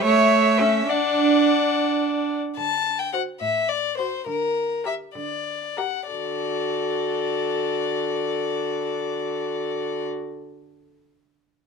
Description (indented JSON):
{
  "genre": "quick classical-period movement for string quartet",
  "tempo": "62-73 BPM (dotted quarters)",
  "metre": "6/8",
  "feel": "straight",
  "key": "D major",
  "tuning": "A4 = 440 Hz",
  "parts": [
    { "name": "warm violin", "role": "melody", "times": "0.0-10.1 s", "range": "Bb4 to A5", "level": "-26 LUFS", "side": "left 7 dB", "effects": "none" },
    { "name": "dark violin", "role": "second line", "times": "0.0-10.1 s", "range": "A4 to E5", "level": "-26 LUFS", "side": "left 6 dB", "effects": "none" },
    { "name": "rich viola", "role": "accompaniment", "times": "0.0-10.1 s", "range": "A3 to G4", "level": "-25 LUFS", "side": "right 4 dB", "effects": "none" },
    { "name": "rich cello", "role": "bass", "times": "0.0-10.1 s", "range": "A2 to C#5", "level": "-26 LUFS", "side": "right 9 dB", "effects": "none" }
  ],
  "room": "light reverb",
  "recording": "minimal, uncompressed stereo recording",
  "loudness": "-21 LUFS",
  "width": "side -5 dB against mid",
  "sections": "0.0-2.6 A section; 2.6-6.1 B section; 6.1-9.8 C section",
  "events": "slowing down 1.7-6.1",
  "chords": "0.0 A; 0.9 D; 2.6 D7; 4.3 Gm/D; 6.1 D"
}